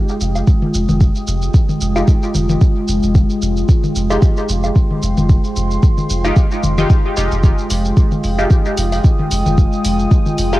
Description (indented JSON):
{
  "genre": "dub techno",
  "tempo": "112 BPM",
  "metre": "4/4",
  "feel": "swing 55% on 16ths",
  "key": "F minor",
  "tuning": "A4 = 440 Hz",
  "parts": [
    { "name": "deep dark ambient pad", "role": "sustained chords", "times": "0.0-10.6 s", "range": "Ab3 to Eb6", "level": "-20 LUFS", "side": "equal", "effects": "chorus, built-in reverb, sidechain pumping, cassette tape" },
    { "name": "filtered dub chord stab", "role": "stabs", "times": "0.0-10.6 s", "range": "Ab3 to G4", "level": "-22 LUFS", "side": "left 1 dB", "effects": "chorus, phaser, sidechain pumping, cassette tape, dub echo" },
    { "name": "electronic shaker and hi-hat", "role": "drums", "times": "0.1-10.6 s", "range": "none", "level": "-28 LUFS", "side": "right 2 dB", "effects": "cassette tape" },
    { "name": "soft dub sub bass", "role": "bass", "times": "0.2-10.6 s", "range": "F1", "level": "-19 LUFS", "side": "equal", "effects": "sidechain pumping" },
    { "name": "electronic woodblock and toms", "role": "percussion", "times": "0.4-10.6 s", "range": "none", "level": "-21 LUFS", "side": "left 2 dB", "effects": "sidechain pumping on toms, cassette tape, sidechain pumping on perc" },
    { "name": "electronic kick drum", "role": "drums", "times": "0.5-10.2 s", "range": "none", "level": "-12 LUFS", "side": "equal", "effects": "cassette tape" }
  ],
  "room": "little or no reverb",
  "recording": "home recording on cassette",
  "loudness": "-12 LUFS",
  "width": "side -17 dB against mid",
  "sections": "0.0-10.6 A section",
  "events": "none",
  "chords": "0.0 Fm9"
}